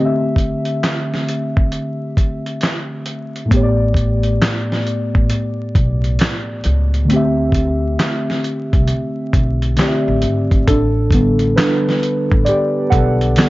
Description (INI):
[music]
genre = lo-fi hip hop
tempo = 67 BPM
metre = 4/4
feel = swing 64% on 16ths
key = A minor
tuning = A4 = 440 Hz
[part]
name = muted felt-like synth keys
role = accompaniment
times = 0.0-13.5 s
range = A2 to F#5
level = -18 LUFS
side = equal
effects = chorus, tremolo, low-pass filter
[part]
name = dusty soul sampler-style drum kit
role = drums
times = 0.4-13.5 s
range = handclaps, hi-hat, kick drum, snare drum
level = -17 LUFS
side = equal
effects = vintage 12-bit sampler grit
[part]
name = upright bass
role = bass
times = 3.5-13.3 s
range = G#1 to D2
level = -18 LUFS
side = equal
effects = none
[sound]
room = light reverb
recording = vinyl crackle, nothing above 7.5 kHz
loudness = -14 LUFS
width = side -18 dB against mid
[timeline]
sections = 0.0-10.7 A section; 10.7-13.5 B section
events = synth keys solo 10.7-13.5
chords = 0.0 D9sus4; 3.5 A9sus4; 7.1 D9sus4; 10.7 A9sus4